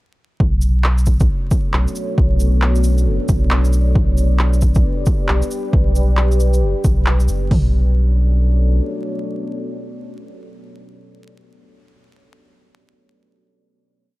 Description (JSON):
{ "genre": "future garage", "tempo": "135 BPM", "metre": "4/4", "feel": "swing 62% on 16ths", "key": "B minor", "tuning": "A4 = 441 Hz", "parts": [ { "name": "deep dark ambient pad", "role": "sustained chords", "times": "1.4-10.5 s", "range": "B3 to D5", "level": "-25 LUFS", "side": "left 1 dB", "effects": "chorus, built-in reverb, sidechain pumping" }, { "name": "warm sub bass", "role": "bass", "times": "0.4-8.8 s", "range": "F#1 to B1", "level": "-15 LUFS", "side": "equal", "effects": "none" }, { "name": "deep house drum kit", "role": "drums", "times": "0.4-7.6 s", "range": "hi-hat, kick drum, toms", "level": "-17 LUFS", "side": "equal", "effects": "overdrive" }, { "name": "electronic shaker and handclaps", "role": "drums", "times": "0.6-7.4 s", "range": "none", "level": "-24 LUFS", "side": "equal", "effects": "overdrive" } ], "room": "little or no reverb", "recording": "dark, warm production, vinyl crackle", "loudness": "-14 LUFS", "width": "side -19 dB against mid", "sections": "0.4-7.5 groove; 7.5-11.1 final chord", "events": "none", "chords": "0.4 Bm7; 4.0 G/B; 7.5 Bm7" }